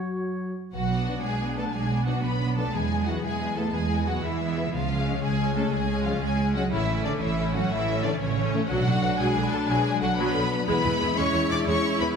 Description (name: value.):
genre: cinematic.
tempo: 121 BPM (dotted quarters).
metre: 12/8.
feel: straight.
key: B dorian.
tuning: A4 = 440 Hz.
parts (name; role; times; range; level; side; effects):
mellow clarinet; second line; 0.0-0.6 s; F#4; -40 LUFS; left 3 dB; none.
warm oboe; second line; 0.0-0.5 s; C#5; -42 LUFS; right 1 dB; none.
mellow French horn section; sustained chords; 0.0-12.2 s; F#3 to E4; -32 LUFS; left 3 dB; none.
concert harp; arpeggios; 0.0-12.2 s; F#2 to C#6; -32 LUFS; left 8 dB; none.
warm symphonic violin section; melody; 0.7-12.1 s; C#5 to D6; -31 LUFS; left 5 dB; none.
clear symphonic violin section; second line; 0.7-12.2 s; C#4 to D5; -33 LUFS; equal; none.
rich symphonic cello section; bass; 0.7-12.2 s; C#3 to D4; -30 LUFS; right 4 dB; none.
warm symphonic double bass section; bass; 0.7-12.1 s; A1 to E2; -29 LUFS; right 4 dB; none.
rich studio viola section; accompaniment; 0.9-12.2 s; D3 to E4; -32 LUFS; right 1 dB; none.
room: wet scoring stage reverb, RT60 1.6 s.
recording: none.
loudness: -23 LUFS.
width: side -6 dB against mid.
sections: 0.7-12.2 A section.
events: none.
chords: 0.0 F#5; 0.7 Bm; 2.7 E; 4.7 C#; 6.7 A; 8.7 Bm; 10.7 E.